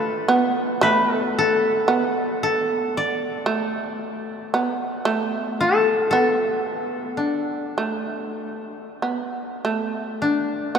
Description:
japanese traditional, Japanese chamber music; 46-58 BPM; 4/4; rubato; A4 = 440 Hz
koto; melody; 0.0-10.8 s; A3 to D5; -22 LUFS; left 2 dB
shamisen; second line; 0.0-10.8 s; A3 to B3; -24 LUFS; right 2 dB
wet cathedral reverb, RT60 5.1 s; in a vast, echoing space; -20 LUFS; side -7 dB against mid
0.0-9.6 A section; 9.6-10.8 B section

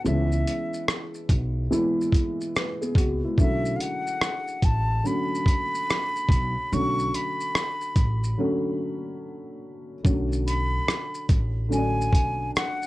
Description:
lo-fi hip hop; 72 BPM; 4/4; swing 65% on 16ths; B dorian; A4 = 443 Hz
breathy concert flute; melody; 0.0-12.9 s; E5 to C#6; -29 LUFS; equal
felt-muted upright piano; accompaniment; 0.0-12.9 s; D3 to B4; -28 LUFS; equal
upright bass; bass; 0.1-12.5 s; A1 to C#2; -27 LUFS; equal
dusty soul sampler-style drum kit; drums; 0.1-12.9 s; hi-hat, kick drum, rim click, shaker; -23 LUFS; equal
light reverb; cassette tape; -22 LUFS; side -18 dB against mid
0.0-10.0 A section; 10.0-12.9 B section
break 8.4-10.0
0.0 C#m7; 3.4 Bm9

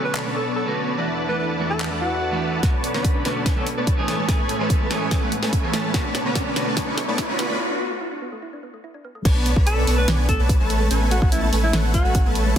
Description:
future bass; 145 BPM; 4/4; half-time; B dorian; A4 = 439 Hz
warm alto saxophone; melody; 0.0-2.6, 9.7-12.3 s; E4 to B4; -27 LUFS; equal; sidechain pumping, ping-pong delay
clean electric guitar; accompaniment; 0.0-7.6 s; D3 to B4; -28 LUFS; right 2 dB; spring reverb, sidechain pumping, ping-pong delay
airy breathy pad; sustained chords; 0.0-12.6 s; E2 to B4; -35 LUFS; equal; chorus, sidechain pumping
dense compressed supersaw; riff; 0.0-12.6 s; A3 to B5; -25 LUFS; equal; sidechain pumping, low-pass filter
pop drum kit; drums; 0.1-12.6 s; crash cymbal, handclaps, hi-hat, snare drum; -28 LUFS; equal; soft clipping on snare, high-pass filter on snare, high-pass filter on hats, high-pass filter on cymbals, high-pass filter on room
thumb-piano-like synth pluck; arpeggios; 2.6-12.6 s; G#3 to F#4; -32 LUFS; right 1 dB; chorus, sidechain pumping, ping-pong delay
electronic kick drum; drums; 2.6-12.6 s; -20 LUFS; equal
riser; sound effects; 4.5-7.6 s; -32 LUFS; equal
saturated sub bass; bass; 9.3-12.6 s; A1 to B1; -21 LUFS; equal; sidechain pumping
moderate lush hall reverb, RT60 2.0 s; dense, heavily limited modern master, high-pass filter; -19 LUFS; side -9 dB against mid
0.0-2.6 A section; 2.6-9.3 B section; 9.3-12.6 C section
build-up 2.6-9.3; drum fill 2.6-7.6; filter sweep on synth arpeggio sound 2.6-9.3; riser 4.5-7.6; break 7.6-9.3; drop 9.3-12.6
0.0 Bm7; 1.0 E7sus4; 2.6 Bm7; 4.1 Amaj9; 5.9 Bm7; 7.6 E7sus4; 9.3 Bm7; 10.7 Amaj9

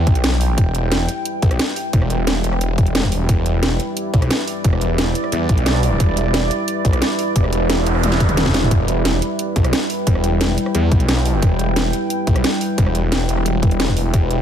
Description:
dark technical drum and bass; 177 BPM; 4/4; straight; E minor; A4 = 440 Hz
deep dark ambient pad; sustained chords; 0.0-14.4 s; G3 to B5; -22 LUFS; right 1 dB; chorus, built-in reverb, sidechain pumping
snarling distorted saw bass; bass; 0.0-14.4 s; E1 to E2; -19 LUFS; equal; distortion, overdrive, sidechain pumping
drum and bass drum kit; drums; 0.1-14.4 s; hi-hat, rim click, snare drum, toms; -21 LUFS; equal; overdrive
electronic kick drum; drums; 0.1-14.2 s; -16 LUFS; equal; overdrive
noise sweep; sound effects; 7.7-8.7 s; -26 LUFS; right 2 dB
little or no reverb; -15 LUFS; side -9 dB against mid
0.0-14.4 A section
noise sweep 7.7-8.7; drum fill 8.0-8.7
0.0 Em

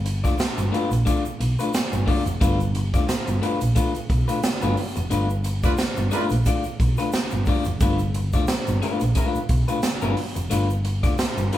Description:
funk; 89 BPM; 4/4; swing 56% on 16ths; G mixolydian; A4 = 440 Hz
electric guitar at the edge of break-up; accompaniment; 0.0-11.6 s; A3 to D5; -26 LUFS; left 4 dB
hollow-body short-scale fingered electric bass; bass; 0.0-11.5 s; F1 to B1; -24 LUFS; equal
swinging big-band drum kit; drums; 0.1-11.6 s; hi-hat, kick drum, snare drum; -24 LUFS; right 1 dB
egg shaker; percussion; 0.2-11.5 s; -41 LUFS; left 2 dB
clear horn section; second line; 5.6-6.2 s; D4 to B4; -28 LUFS; right 4 dB
light reverb; band playing live in one room; -20 LUFS; side -13 dB against mid
0.0-11.6 A section
band accent 5.1-7.8
0.0 G9

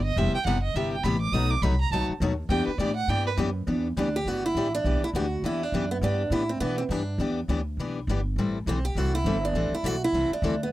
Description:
acoustic string swing (jazz manouche); 204 BPM; 4/4; swing 59% on 8ths; E minor; A4 = 442 Hz
rich violin; second line; 0.0-3.3 s; B4 to D#6; -29 LUFS; right 6 dB
upright bass; bass; 0.0-10.7 s; E1 to B2; -28 LUFS; equal
picked steel-string acoustic guitar; accompaniment; 0.2-10.5 s; B2 to A4; -29 LUFS; left 4 dB
picked steel-string acoustic guitar; melody; 4.0-10.7 s; B3 to G4; -27 LUFS; right 2 dB
light reverb; dry, close 1970s-style studio recording; -24 LUFS; side -15 dB against mid
0.0-3.7 A section; 3.7-10.7 B section
violin solo 0.0-3.7
0.0 Cmaj7; 1.3 B7; 2.5 Em7; 8.4 Am7

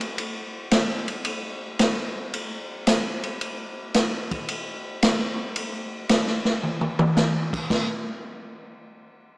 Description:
jazz; 112 BPM; 4/4; swing 68% on 8ths
swinging big-band drum kit; drums; 0.0-7.9 s; crash cymbal, hi-hat, kick drum, ride cymbal, snare drum, toms; -23 LUFS; equal
wet lush hall reverb, RT60 2.6 s; dreamy mix soaked in reverb, small speaker sound; -22 LUFS; side -26 dB against mid
0.0-7.7 A section; 7.7-9.4 B section
drum fill 6.6-7.2

